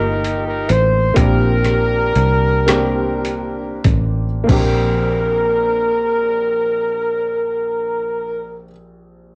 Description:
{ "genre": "slow gospel", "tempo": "30-45 BPM (dotted quarters)", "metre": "6/8", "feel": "straight", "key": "Bb major", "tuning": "A4 = 438 Hz", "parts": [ { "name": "warm horn section", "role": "melody", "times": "0.0-8.7 s", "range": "D4 to C5", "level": "-20 LUFS", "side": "equal", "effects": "cassette tape" }, { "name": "clear concert grand piano", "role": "accompaniment", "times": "0.0-9.3 s", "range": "Bb1 to G4", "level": "-26 LUFS", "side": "equal", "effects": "cassette tape" }, { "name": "fingered electric bass", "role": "bass", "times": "0.0-8.7 s", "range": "G1 to C2", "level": "-21 LUFS", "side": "equal", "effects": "transformer saturation" }, { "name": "trip hop sampler-style drum kit", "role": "drums", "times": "0.2-4.8 s", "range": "crash cymbal, hi-hat, kick drum, rim click", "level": "-22 LUFS", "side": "equal", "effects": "overdrive, cassette tape" } ], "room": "light reverb", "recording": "home recording on cassette", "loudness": "-17 LUFS", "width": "mono", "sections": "0.0-4.5 A section; 4.5-8.5 B section", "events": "slowing down 0.0-4.5", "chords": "0.0 F9sus4; 1.2 Bb69" }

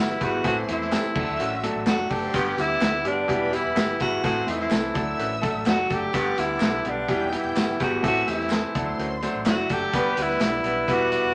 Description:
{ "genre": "uptempo 1960s-style soul", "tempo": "127 BPM", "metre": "4/4", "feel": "straight", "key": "G major", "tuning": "A4 = 440 Hz", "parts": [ { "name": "clear tenor saxophone", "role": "melody", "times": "0.0-11.3 s", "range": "D4 to G4", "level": "-28 LUFS", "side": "equal", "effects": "none" }, { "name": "warm symphonic violin section", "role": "second line", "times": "0.0-11.3 s", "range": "C4 to G6", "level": "-37 LUFS", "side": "equal", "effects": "none" }, { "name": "bright concert grand piano", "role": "accompaniment", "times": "0.0-11.3 s", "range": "D3 to C5", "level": "-29 LUFS", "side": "equal", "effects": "none" }, { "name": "vintage muted fingered electric bass", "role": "bass", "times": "0.0-11.3 s", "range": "E1 to G2", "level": "-40 LUFS", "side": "equal", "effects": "none" }, { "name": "vintage drum kit", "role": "drums", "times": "0.1-11.2 s", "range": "crash cymbal, hi-hat, kick drum, snare drum", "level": "-30 LUFS", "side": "equal", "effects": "none" }, { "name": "raspy baritone saxophone", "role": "riff", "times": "0.2-10.1 s", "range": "E2 to A2", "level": "-34 LUFS", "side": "equal", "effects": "none" }, { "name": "tambourine and handclaps", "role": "percussion", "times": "0.2-11.2 s", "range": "none", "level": "-42 LUFS", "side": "equal", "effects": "none" }, { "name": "hollow-body jazz guitar", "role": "riff", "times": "0.9-2.1, 5.0-6.1 s", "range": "F#4 to B4", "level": "-38 LUFS", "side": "equal", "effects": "none" } ], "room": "wet club reverb, RT60 0.8 s", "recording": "none", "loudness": "-24 LUFS", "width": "mono", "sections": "0.0-11.3 A section", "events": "none", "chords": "0.5 Am; 1.2 D; 2.3 G; 3.3 Em; 4.2 Am; 5.0 D; 6.1 G; 7.1 Em; 8.0 Am; 8.8 D; 9.9 G" }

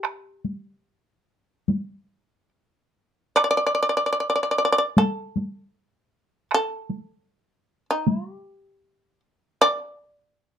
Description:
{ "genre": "japanese traditional, Japanese chamber music", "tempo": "70-78 BPM", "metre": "4/4", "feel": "rubato", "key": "unclear", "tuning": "A4 = 440 Hz", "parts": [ { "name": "shamisen", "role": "melody", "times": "0.0-10.6 s", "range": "G4 to D5", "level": "-20 LUFS", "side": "equal", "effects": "none" }, { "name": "taiko ensemble", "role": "percussion", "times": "0.0-9.8 s", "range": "none", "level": "-22 LUFS", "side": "equal", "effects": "none" } ], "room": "moderate small room reverb, RT60 0.6 s", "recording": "none", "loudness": "-21 LUFS", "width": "side -9 dB against mid", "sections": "0.0-3.4 A section; 3.4-10.6 B section", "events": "none", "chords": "none" }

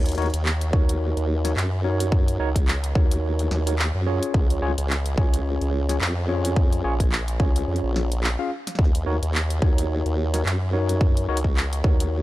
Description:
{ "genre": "glitch hop", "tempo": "108 BPM", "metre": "4/4", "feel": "swing 57% on 16ths", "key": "unclear", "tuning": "A4 = 441 Hz", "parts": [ { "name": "tine electric piano", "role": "stabs", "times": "0.0-12.2 s", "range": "Db4 to F5", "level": "-28 LUFS", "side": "equal", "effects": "medium stereo tremolo, sidechain pumping, analog delay" }, { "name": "formant-sweep wobble bass", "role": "bass", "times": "0.0-12.2 s", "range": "Bb1 to Gb2", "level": "-24 LUFS", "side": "equal", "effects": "chorus" }, { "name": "dubstep drum kit", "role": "drums", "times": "0.1-12.1 s", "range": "handclaps, hi-hat, snare drum", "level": "-29 LUFS", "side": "equal", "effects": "none" }, { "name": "electronic kick drum", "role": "drums", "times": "0.7-12.0 s", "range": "none", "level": "-20 LUFS", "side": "equal", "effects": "none" } ], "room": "little or no reverb", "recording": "dry, gritty hardware recording, transformer saturation", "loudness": "-20 LUFS", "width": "side -16 dB against mid", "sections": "0.0-12.2 A section", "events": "none", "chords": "0.0 Db; 8.8 Ebm7" }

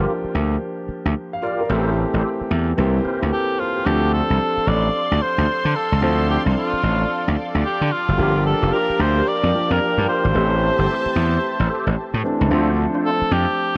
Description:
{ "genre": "R&B", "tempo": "111 BPM", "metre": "4/4", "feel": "swing 63% on 16ths", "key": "D minor", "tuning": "A4 = 440 Hz", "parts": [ { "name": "warm concert grand piano", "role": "accompaniment", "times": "0.0-13.8 s", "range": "E3 to A5", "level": "-27 LUFS", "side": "equal", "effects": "none" }, { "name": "tonewheel organ", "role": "stabs", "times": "0.0-3.3, 8.2-13.1 s", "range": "D4 to C5", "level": "-31 LUFS", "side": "equal", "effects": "overdrive, chorus vibrato, slow rotary speaker, delay" }, { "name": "gritty slap bass", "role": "bass", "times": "0.0-13.4 s", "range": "F1 to D3", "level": "-22 LUFS", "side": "equal", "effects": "overdrive" }, { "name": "warm cor anglais", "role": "melody", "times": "3.3-13.8 s", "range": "F4 to D5", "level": "-24 LUFS", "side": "equal", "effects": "delay" }, { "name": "lush unison pad", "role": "sustained chords", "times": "3.9-12.5 s", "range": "G4 to C6", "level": "-30 LUFS", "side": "equal", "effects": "chorus, phaser" } ], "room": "light reverb, small room ambience", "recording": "dark, warm production", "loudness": "-20 LUFS", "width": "mono", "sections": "0.0-3.9 A section; 3.9-12.5 B section; 12.5-13.8 C section", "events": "none", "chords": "0.0 Gm7; 1.7 Am7; 2.8 C7; 3.9 Dm7; 8.2 Gm7; 10.3 Am7; 12.5 Dm7" }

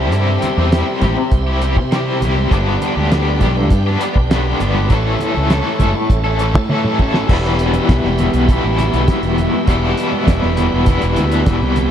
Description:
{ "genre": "psychedelic rock", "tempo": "100 BPM", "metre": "4/4", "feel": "straight", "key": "E minor", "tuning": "A4 = 438 Hz", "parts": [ { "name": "tonewheel organ", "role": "sustained chords", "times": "0.0-11.9 s", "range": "G4 to A5", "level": "-25 LUFS", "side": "right 3 dB", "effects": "slow rotary speaker, overdrive, chorus vibrato" }, { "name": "overdriven electric guitar", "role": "riff", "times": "0.0-11.9 s", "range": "E2 to A4", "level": "-17 LUFS", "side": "left 2 dB", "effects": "tremolo" }, { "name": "fuzz fingered electric bass", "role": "bass", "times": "0.0-11.9 s", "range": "E1 to C3", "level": "-18 LUFS", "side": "equal", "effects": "overdrive" }, { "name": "cloth-damped thuddy drum kit", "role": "drums", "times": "0.1-11.9 s", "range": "crash cymbal, hi-hat, kick drum, snare drum, toms", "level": "-19 LUFS", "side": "equal", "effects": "none" }, { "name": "congas", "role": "percussion", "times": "0.4-11.9 s", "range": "none", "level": "-28 LUFS", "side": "right 4 dB", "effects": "none" } ], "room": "moderate huge ambient reverb, RT60 7.6 s", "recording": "dreamy mix soaked in reverb", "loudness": "-13 LUFS", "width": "side -9 dB against mid", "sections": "0.0-7.3 A section; 7.3-11.9 B section", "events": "drum fill 6.7-7.3", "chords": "0.0 C; 2.5 G; 4.9 A; 7.3 Em" }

